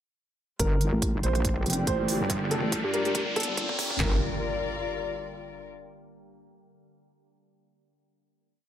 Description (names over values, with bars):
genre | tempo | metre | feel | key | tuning
heavy wobble dubstep | 141 BPM | 4/4 | swing 55% on 16ths, half-time | G minor | A4 = 438 Hz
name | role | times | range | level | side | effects
dark baby grand piano | melody | 0.6-4.2 s | A4 to C5 | -34 LUFS | right 2 dB | tape echo
evolving wavetable pad | sustained chords | 1.2-4.2 s | D3 to G4 | -38 LUFS | right 1 dB | phaser, built-in reverb, sidechain pumping
wobble bass | bass | 0.6-4.2 s | G1 to Bb1 | -26 LUFS | equal | chorus, overdrive
dubstep drum kit | drums | 0.6-4.1 s | handclaps, kick drum, snare drum | -31 LUFS | equal | small room ambience
electronic hi-hat | drums | 0.6-3.9 s | none | -32 LUFS | right 4 dB | small room ambience
riser and impact | sound effects | 1.8-5.7 s | none | -33 LUFS | equal | none
dark chamber string section | texture | 0.6-5.7 s | Bb3 to D5 | -35 LUFS | left 4 dB | sidechain pumping
vowel-sweep wobble bass | bass | 0.9-3.7 s | F1 to G2 | -28 LUFS | equal | chorus, overdrive
room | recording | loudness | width
light reverb | high-pass filter | -25 LUFS | side -11 dB against mid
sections
0.6-4.0 build; 4.0-5.7 final chord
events
build-up 0.6-4.0; filter sweep 0.6-4.0; riser 1.8-4.0; drum fill 2.3-4.0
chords
0.6 Gm